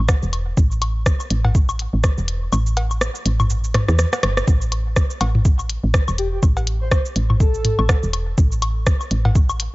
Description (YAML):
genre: minimal techno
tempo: 123 BPM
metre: 4/4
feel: swing 58% on 16ths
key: unclear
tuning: A4 = 439 Hz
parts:
  - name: woody FM bass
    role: bass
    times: 0.0-9.7 s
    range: E1 to E2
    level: -20 LUFS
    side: equal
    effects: sidechain pumping
  - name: electronic kick drum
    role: drums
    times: 0.1-9.5 s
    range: none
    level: -17 LUFS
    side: equal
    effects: none
  - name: minimal click drum kit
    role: drums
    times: 0.1-9.7 s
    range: hi-hat, rim click, shaker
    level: -24 LUFS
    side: equal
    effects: none
  - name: electronic cowbell, woodblock and toms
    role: percussion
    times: 0.1-9.6 s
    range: none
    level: -23 LUFS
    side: left 1 dB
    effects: none
  - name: breathy flute-like synth lead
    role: melody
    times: 6.2-8.1 s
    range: G4 to C5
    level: -28 LUFS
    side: left 1 dB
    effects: analog chorus, dub echo
room: digital ambience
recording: nothing above 7.7 kHz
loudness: -16 LUFS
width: side -21 dB against mid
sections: 0.0-9.7 A section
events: kick drops out 2.5-4.5; drum fill 3.7-4.5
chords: 0.0 A5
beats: 0.09 | 0.57 1.06 1.55 2.04 | 2.52 3.01 3.50 3.99 | 4.48 4.96 5.45 5.94 | 6.43 6.92 7.40 7.89 | 8.38 8.87 9.35